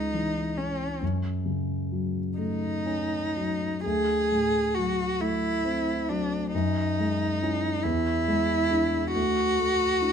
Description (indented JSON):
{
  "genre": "classical, impressionist duo for cello and grand piano",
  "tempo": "45 BPM (dotted quarters)",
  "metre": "6/8",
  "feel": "rubato",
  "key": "unclear",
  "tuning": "A4 = 440 Hz",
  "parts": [
    { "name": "warm cello", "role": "melody", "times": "0.0-10.1 s", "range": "C#4 to G#4", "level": "-26 LUFS", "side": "equal", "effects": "none" },
    { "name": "dark grand piano", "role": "accompaniment", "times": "0.0-10.1 s", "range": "C#2 to E4", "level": "-28 LUFS", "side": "left 1 dB", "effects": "none" }
  ],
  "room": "moderate stone room reverb, RT60 1.2 s",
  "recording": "close, detailed microphones",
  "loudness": "-24 LUFS",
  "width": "side -7 dB against mid",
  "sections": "0.0-10.1 A section",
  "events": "none",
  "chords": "0.0 C#m; 1.0 F#m6; 3.8 D9; 6.5 F#sus2; 7.8 E7; 9.1 D",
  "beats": "| 1.01 2.36 | 3.85 5.19 | 6.52 7.84 | 9.14"
}